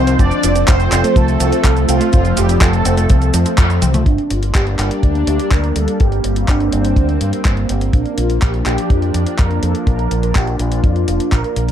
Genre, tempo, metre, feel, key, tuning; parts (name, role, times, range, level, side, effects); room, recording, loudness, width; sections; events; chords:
italo disco; 124 BPM; 4/4; straight; G minor; A4 = 440 Hz
mellow synth brass; melody; 0.0-11.7 s; F3 to D5; -20 LUFS; right 2 dB; chorus, ping-pong delay
lush unison pad; sustained chords; 0.0-11.7 s; Eb3 to D4; -20 LUFS; equal; chorus, phaser
analog pluck; arpeggios; 0.0-4.0 s; F3 to F4; -23 LUFS; right 3 dB; chorus, phaser, vintage 12-bit sampler grit, diffuse ambient delay
fingered electric bass with an envelope filter; bass; 0.0-11.7 s; F1 to G2; -17 LUFS; equal
clean 12-bit digital drum machine; drums; 0.1-11.7 s; cabasa, handclaps, hi-hat, toms; -22 LUFS; left 1 dB
kick drum; drums; 0.2-11.4 s; -13 LUFS; equal
light reverb; -12 LUFS; side -10 dB against mid
0.0-4.1 A section; 4.1-11.7 B section
band accent 3.6; drum fill 3.8
0.2 F; 4.1 Gm; 7.9 Bb